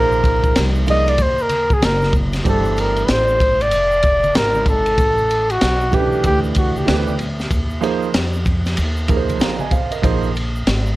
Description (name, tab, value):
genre	hip hop, jazz-hop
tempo	95 BPM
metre	4/4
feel	swing 62% on 16ths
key	unclear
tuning	A4 = 440 Hz
part	warm flugelhorn	melody	0.0-7.2 s	F#4 to Eb5	-17 LUFS	equal	none
part	warm concert grand piano	accompaniment	0.0-10.3 s	E3 to Bb5	-22 LUFS	right 6 dB	none
part	upright bass	bass	0.0-11.0 s	F1 to F2	-21 LUFS	equal	none
part	tube shaker and congas	percussion	0.1-11.0 s	none	-32 LUFS	left 2 dB	none
part	crunchy breakbeat drum kit	drums	0.2-10.9 s	hi-hat, kick drum, ride cymbal, snare drum	-20 LUFS	equal	none
room	small room ambience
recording	none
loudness	-15 LUFS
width	side -18 dB against mid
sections	0.0-2.5 A section; 2.5-11.0 B section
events	flugelhorn solo 0.0-2.5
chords	0.0 Bb9sus4; 2.5 G9sus4; 5.0 A9sus4; 7.5 Ebsus24; 10.0 Bb9sus4